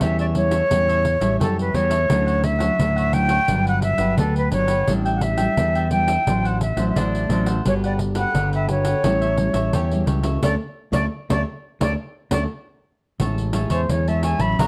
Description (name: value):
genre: samba and choro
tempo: 86 BPM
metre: 4/4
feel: straight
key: D major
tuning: A4 = 436 Hz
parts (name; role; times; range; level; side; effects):
- silver concert flute; melody; 0.0-14.7 s; A4 to B5; -25 LUFS; equal; none
- cavaquinho; accompaniment; 0.0-14.7 s; D4 to A5; -32 LUFS; equal; none
- nylon-string guitar; accompaniment; 0.0-14.7 s; G2 to A4; -28 LUFS; equal; none
- growling fingered electric bass; bass; 0.0-14.7 s; G1 to F#2; -25 LUFS; equal; overdrive
- pandeiro; percussion; 0.0-14.7 s; none; -28 LUFS; equal; none
room: moderate studio reverb, RT60 0.8 s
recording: dark, warm production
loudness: -21 LUFS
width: mono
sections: 0.0-13.2 A section; 13.2-14.7 B section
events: band accent 10.4-13.2; flute solo 13.2-14.7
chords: 0.0 A7; 2.1 Dmaj9; 3.5 Gmaj7; 4.9 A7sus4; 6.3 D7/A; 7.7 Gmaj9; 9.0 A7; 10.4 D5; 13.2 Amaj7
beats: 0.02 0.71 1.41 | 2.10 2.79 3.49 4.18 | 4.88 5.57 6.27 6.96 | 7.65 8.35 9.04 9.74 | 10.43 11.12 11.82 12.51 | 13.20 13.90 14.59